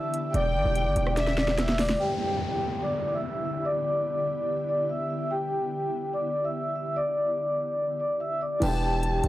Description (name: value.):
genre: hip hop, trap.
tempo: 145 BPM.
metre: 4/4.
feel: half-time.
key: E minor.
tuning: A4 = 440 Hz.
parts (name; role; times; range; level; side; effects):
vibraphone with soft mallets; melody; 0.0-9.3 s; G4 to E6; -27 LUFS; equal; low-pass filter, tape echo.
felt-muted upright piano; accompaniment; 0.0-2.0, 8.6-9.3 s; E3 to G4; -35 LUFS; equal; low-pass filter.
ethereal airy pad; sustained chords; 0.0-8.6 s; D3 to G4; -35 LUFS; equal; ensemble chorus, built-in reverb, tremolo.
trap drum kit; drums; 0.1-2.0, 8.6-9.3 s; crash cymbal, hi-hat, rim click, snare drum; -29 LUFS; equal; none.
warm symphonic violin section; second line; 0.3-1.6, 8.6-9.3 s; E5 to A5; -34 LUFS; left 1 dB; tape echo.
distorted 808-style bass; bass; 0.3-2.0, 8.6-9.3 s; E1 to G1; -27 LUFS; equal; distortion.
downlifter; sound effects; 2.0-5.3 s; none; -36 LUFS; equal; none.
warm brass ensemble; stabs; 8.6-9.3 s; B1 to D3; -44 LUFS; left 1 dB; none.
room: small room ambience.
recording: dry, gritty hardware recording, transformer saturation.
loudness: -25 LUFS.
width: side -15 dB against mid.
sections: 0.0-2.0 A section; 2.0-8.6 B section.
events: drum fill 1.2-2.0.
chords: 0.0 Em7.